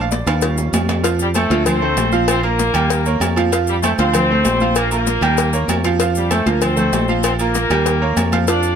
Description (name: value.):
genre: latin, salsa.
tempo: 194 BPM.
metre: 4/4.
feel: straight.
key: unclear.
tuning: A4 = 439 Hz.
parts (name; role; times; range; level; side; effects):
bright concert grand piano; accompaniment; 0.0-8.7 s; F3 to G5; -20 LUFS; right 5 dB; none.
modern bright fingered electric bass; bass; 0.0-8.8 s; Bb1 to F2; -20 LUFS; left 1 dB; none.
congas; percussion; 0.1-8.8 s; none; -25 LUFS; left 4 dB; none.
cowbell; percussion; 0.1-8.6 s; none; -25 LUFS; left 9 dB; none.
maracas; percussion; 0.1-8.8 s; none; -29 LUFS; left 6 dB; none.
timbales and agogo bells; percussion; 0.1-8.6 s; none; -25 LUFS; right 5 dB; none.
bright horn section; melody; 1.2-8.8 s; G3 to D5; -20 LUFS; left 2 dB; none.
room: light reverb.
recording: none.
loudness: -14 LUFS.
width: side -7 dB against mid.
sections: 0.0-1.1 A section; 1.1-8.8 B section.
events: grand piano solo 0.0-1.1; drum fill 0.3-1.1.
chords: 0.4 Eb7; 1.1 F6; 1.7 Dm7; 2.3 Bb5; 2.9 Eb7; 3.5 F6; 4.1 Dm7; 4.8 Bb5; 5.4 Eb7; 6.0 F6; 6.6 Dm7; 7.2 Bb5; 7.9 Eb7.